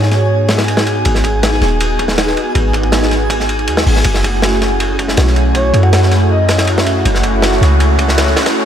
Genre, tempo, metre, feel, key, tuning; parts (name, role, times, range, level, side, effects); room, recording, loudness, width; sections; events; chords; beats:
drum and bass, jungle; 160 BPM; 4/4; straight; G# phrygian; A4 = 441 Hz
breathy flute-like synth lead; melody; 0.0-0.5, 5.6-6.7 s; C#5 to F#5; -20 LUFS; right 1 dB; chorus, dub echo
lush unison pad; sustained chords; 0.0-8.7 s; A3 to G#4; -17 LUFS; right 1 dB; chorus
warm 808-style bass; bass; 0.0-8.3 s; D#1 to G#2; -14 LUFS; equal
crunchy breakbeat drum kit; drums; 0.0-8.5 s; hi-hat, kick drum, ride cymbal, snare drum; -17 LUFS; equal; high-pass filter on kick, high-pass filter on cymbals, high-pass filter on hats, high-pass filter on snare, high-pass filter on room
twinkling granular texture; texture; 0.0-8.6 s; G#4 to G#5; -22 LUFS; left 2 dB; built-in reverb
riser; sound effects; 5.7-8.7 s; -26 LUFS; right 1 dB
light reverb, studio ambience; -10 LUFS; side -9 dB against mid
0.0-8.7 A section
build-up 0.0-8.7; filter sweep on analog synth pad 0.0-8.7; filter sweep on soft synth lead 0.0-8.7
0.0 G#m7; 4.1 F#m7
0.30 0.68 | 1.05 1.43 1.80 2.18 | 2.55 2.93 3.30 3.68 | 4.05 4.43 4.80 5.18 | 5.55 5.93 6.30 6.68 | 7.05 7.43 7.80 8.18 | 8.55